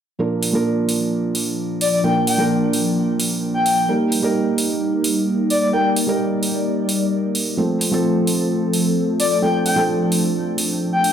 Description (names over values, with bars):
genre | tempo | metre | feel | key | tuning
EDM, festival progressive house | 130 BPM | 4/4 | straight | Bb major | A4 = 440 Hz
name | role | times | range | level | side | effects
felt-muted upright piano | accompaniment | 0.2-11.1 s | Bb2 to Bb4 | -21 LUFS | right 2 dB | tape echo
lush unison pad | sustained chords | 0.2-11.1 s | F3 to D5 | -22 LUFS | left 2 dB | chorus, phaser
electronic hi-hat | drums | 0.4-11.1 s | none | -24 LUFS | right 2 dB | none
breathy flute-like synth lead | melody | 1.8-5.9, 9.2-11.1 s | D5 to G5 | -21 LUFS | left 2 dB | chorus, tape echo
room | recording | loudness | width
moderate digital room reverb, RT60 1.0 s | none | -17 LUFS | side -8 dB against mid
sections
0.2-11.1 A section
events
filter sweep on analog synth pad 0.2-11.1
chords
0.2 Bb; 3.9 Eb; 7.6 F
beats
| 0.20 0.66 1.12 1.58 | 2.04 2.50 2.96 3.42 | 3.89 4.35 4.81 5.27 | 5.73 6.20 6.66 7.12 | 7.58 8.04 8.50 8.96 | 9.43 9.89 10.35 10.81